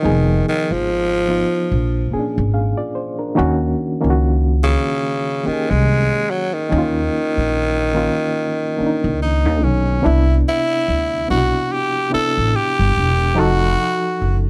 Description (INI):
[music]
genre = R&B, neo-soul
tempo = 72 BPM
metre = 4/4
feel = swing 57% on 16ths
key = unclear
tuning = A4 = 440 Hz
[part]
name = raspy tenor saxophone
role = melody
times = 0.0-14.4 s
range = Db3 to A4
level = -22 LUFS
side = equal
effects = none
[part]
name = barky reed electric piano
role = accompaniment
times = 0.0-14.5 s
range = Bb2 to F5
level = -24 LUFS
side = equal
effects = fast tremolo
[part]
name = upright bass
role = bass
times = 0.1-14.5 s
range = E1 to Eb2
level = -20 LUFS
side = equal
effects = none
[sound]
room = little or no reverb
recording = dry, close 1970s-style studio recording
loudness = -18 LUFS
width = mono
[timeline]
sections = 0.0-10.0 A section; 10.0-14.5 B section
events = none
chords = 0.0 Fm7b5; 1.7 Bb7; 3.4 Ebm7; 10.0 Cmaj9; 13.4 F7b9